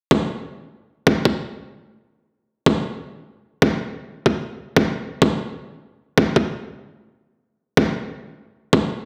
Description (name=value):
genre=glitch hop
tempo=94 BPM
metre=4/4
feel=swing 58% on 16ths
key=none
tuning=none
part: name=electronic kick drum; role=drums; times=0.1-8.9 s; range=none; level=-19 LUFS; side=equal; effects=high-pass filter on kick
room=little or no reverb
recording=played on a big sound system in a bare room, large studio reverb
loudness=-21 LUFS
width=mono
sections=0.1-9.1 A section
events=none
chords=none